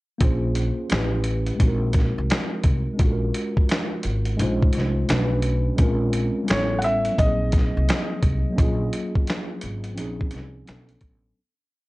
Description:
lo-fi hip hop; 86 BPM; 4/4; swing 66% on 16ths; A4 = 441 Hz
mellow tine electric piano; accompaniment; 0.2-11.4 s; F3 to C5; -27 LUFS; equal; medium stereo tremolo, cassette tape, low-pass filter
upright bass; bass; 0.2-11.3 s; Ab1 to C2; -24 LUFS; equal
dusty soul sampler-style drum kit; drums; 0.2-11.2 s; finger snaps, hi-hat, kick drum, snare drum; -22 LUFS; equal; vintage 12-bit sampler grit
felt-muted upright piano; melody; 6.5-10.6 s; C#5 to Gb5; -26 LUFS; equal; low-pass filter, plate reverb
light reverb; cassette tape; -20 LUFS; side -20 dB against mid
0.2-11.4 A section
fade-out 8.6-11.4
0.2 Bbm9; 0.9 A9; 1.6 Ab7/Bb; 3.0 Gbmaj9/Bb; 4.4 Dbmaj9/Bb; 5.1 Bm9; 5.8 Bbm9; 6.5 A9; 7.2 Ab7/Bb; 8.6 Gbmaj9/Bb; 10.0 Dbmaj9/Bb; 10.7 Bm9

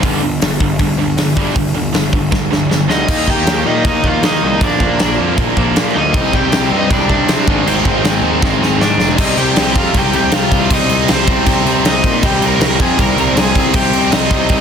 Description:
punk rock; 158 BPM; 4/4; straight; C minor; A4 = 440 Hz
distorted electric guitar; riff; 0.0-14.6 s; G2 to Eb4; -19 LUFS; left 11 dB; distortion
tight distorted guitar; riff; 0.0-14.6 s; G2 to Eb4; -20 LUFS; right 14 dB; distortion
fuzz picked electric bass; bass; 0.0-14.6 s; F1 to Eb3; -19 LUFS; right 1 dB; overdrive
big rock drum kit; drums; 0.0-14.6 s; crash cymbal, hi-hat, kick drum, snare drum; -16 LUFS; equal
crunchy overdriven guitar; melody; 2.9-14.6 s; C4 to Bb5; -18 LUFS; equal; ping-pong delay
heavy high-gain guitar; riff; 6.1-14.6 s; Ab2 to C4; -20 LUFS; left 1 dB; distortion
light reverb; dense, heavily limited modern master; -11 LUFS; side -7 dB against mid
0.0-3.1 A section; 3.1-9.2 B section; 9.2-14.6 C section
drum fill 2.3-3.1, 8.4-9.2
0.0 G5; 3.1 Eb; 4.6 Bb; 6.1 Cm; 7.5 Ab; 9.2 Cm

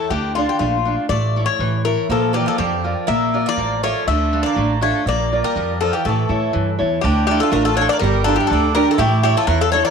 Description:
greek folk, Greek bouzouki band; 122 BPM; 2/4; straight; A4 = 440 Hz
Greek bouzouki; melody; 0.0-9.9 s; F4 to E5; -20 LUFS; left 9 dB; slapback echo
picked steel-string acoustic guitar; accompaniment; 0.0-9.9 s; D3 to D5; -21 LUFS; right 2 dB
upright bass; bass; 0.1-9.8 s; G1 to A2; -21 LUFS; right 1 dB
Greek bouzouki; second line; 2.1-9.9 s; D3 to Bb4; -24 LUFS; right 12 dB
moderate echo chamber reverb, RT60 1.7 s, studio reverb; 1960s-style stereo with parts hard left and right; -16 LUFS; side -6 dB against mid
0.0-7.0 A section; 7.0-9.9 B section
0.1 Dm; 1.1 A; 2.1 Bb; 4.1 Dm; 5.1 Bb; 6.0 A; 7.0 Dm; 8.0 Gm; 9.0 A

